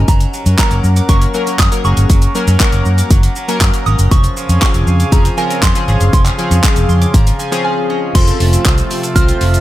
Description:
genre	dance-pop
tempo	119 BPM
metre	4/4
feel	straight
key	unclear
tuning	A4 = 442 Hz
part	soft synth bell	melody	0.0-9.6 s	Ab5 to F6	-22 LUFS	right 3 dB	chorus, tape echo
part	chorused retro synth keys	accompaniment	0.0-9.4 s	F3 to C6	-20 LUFS	left 2 dB	sidechain pumping
part	chorused pulse-width pad	sustained chords	0.0-9.6 s	C3 to Bb5	-23 LUFS	equal	sidechain pumping
part	steel-string zither	arpeggios	0.0-9.6 s	Eb3 to D6	-26 LUFS	right 1 dB	sidechain pumping, tape echo
part	vintage muted fingered electric bass	bass	0.0-9.6 s	F1 to Gb2	-13 LUFS	equal	sidechain pumping
part	pop drum kit	drums	0.1-9.6 s	crash cymbal, handclaps, hi-hat, kick drum, shaker	-13 LUFS	equal	none
room	digital ambience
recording	none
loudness	-10 LUFS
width	side -14 dB against mid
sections	0.0-8.2 A section; 8.2-9.6 B section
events	synth keys fill 6.6-8.2; break 7.6-8.2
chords	0.1 Gb; 4.1 Dbmaj7/F; 8.2 F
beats	| 0.08 0.59 1.09 1.59 | 2.10 2.60 3.11 3.61 | 4.12 4.62 5.12 5.63 | 6.13 6.64 7.14 7.64 | 8.15 8.65 9.16

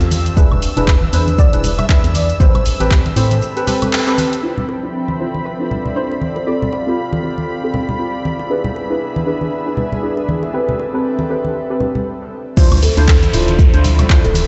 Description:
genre	deep house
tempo	118 BPM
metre	4/4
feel	swing 58% on 16ths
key	D dorian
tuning	A4 = 440 Hz
part	organ-like FM bass	bass	0.0-3.4, 12.6-14.5 s	D1 to A2	-18 LUFS	equal	sidechain pumping
part	punchy analog drum machine	drums	0.0-4.4, 12.6-14.5 s	crash cymbal, handclaps, hi-hat, shaker, woodblock	-25 LUFS	equal	low-pass filter on perc, low-pass filter on hats, low-pass filter on snare, low-pass filter on cymbals, low-pass filter on room
part	analog string pad	texture	0.0-14.5 s	B5 to E6	-32 LUFS	equal	ensemble chorus
part	granular cloud pad	texture	0.0-12.1 s	C4 to B5	-30 LUFS	equal	built-in reverb, sidechain pumping
part	congas and bongos	percussion	0.1-14.5 s	none	-25 LUFS	equal	none
part	deep mellow chord stab	stabs	0.4-14.2 s	C4 to C5	-23 LUFS	equal	chorus, sidechain pumping, dub echo
part	electronic kick drum	drums	0.4-3.0, 12.6-14.2 s	none	-14 LUFS	equal	none
part	soft round pluck	melody	0.9-8.2 s	B4 to E5	-29 LUFS	equal	ensemble chorus, vintage 12-bit sampler grit, dub echo
part	airy breathy pad	sustained chords	4.4-14.5 s	F3 to F5	-29 LUFS	equal	chorus, sidechain pumping
part	downlifter	sound effects	12.6-14.5 s	none	-30 LUFS	equal	none
part	kalimba	melody	12.8-14.5 s	A4	-25 LUFS	equal	digital delay
room	moderate lush hall reverb, RT60 2.5 s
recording	played on a big sound system in a bare room, stone room reverb, nothing above 8.0 kHz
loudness	-16 LUFS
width	mono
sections	0.0-4.4 A section; 4.4-12.6 B section; 12.6-14.5 C section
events	break 3.4-4.4; band accent 3.9; filter sweep on drum 4.4-12.6; filter sweep on analog synth pad 4.4-12.6; stop 12.1-12.6; drop 12.6-14.5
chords	0.1 E7; 2.4 Am9; 4.4 Dm9; 6.5 G9sus4; 8.2 E7; 10.5 Am9; 12.6 Dm9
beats	| 0.37 0.88 1.39 1.89 | 2.40 2.91 3.42 3.93 | 4.44 4.94 5.45 5.96 | 6.47 6.98 7.49 8.00 | 8.50 9.01 9.52 10.03 | 10.54 11.05 11.55 12.06 | 12.57 13.08 13.59 14.10

